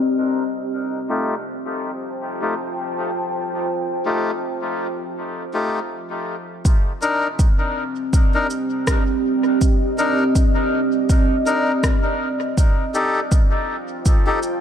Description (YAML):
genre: ambient dub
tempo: 81 BPM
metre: 4/4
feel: swing 57% on 16ths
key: C dorian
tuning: A4 = 443 Hz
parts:
  - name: deep dark ambient pad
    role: sustained chords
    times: 0.0-14.6 s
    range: C4 to A5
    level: -22 LUFS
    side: right 1 dB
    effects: chorus, built-in reverb
  - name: melodica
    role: stabs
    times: 1.1-14.4 s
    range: A3 to Bb4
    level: -24 LUFS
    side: left 2 dB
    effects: dub echo
  - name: electronic kick drum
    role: drums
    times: 6.7-14.2 s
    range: none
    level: -16 LUFS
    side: equal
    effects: none
  - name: electronic shaker and rim click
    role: drums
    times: 6.7-14.6 s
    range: none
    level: -29 LUFS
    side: equal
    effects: low-pass filter on perc, low-pass filter on snare, dub echo
room: moderate echo chamber reverb, RT60 2.1 s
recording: low-pass filter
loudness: -18 LUFS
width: side -9 dB against mid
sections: 0.0-6.7 A section; 6.7-14.6 B section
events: filter sweep 0.0-6.7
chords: 0.0 Cmadd9; 0.7 F9; 6.7 Cm9; 12.6 F9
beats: | 0.72 1.47 2.21 2.95 | 3.69 4.43 5.17 5.91 | 6.65 7.39 8.13 8.87 | 9.61 10.35 11.09 11.84 | 12.58 13.32 14.06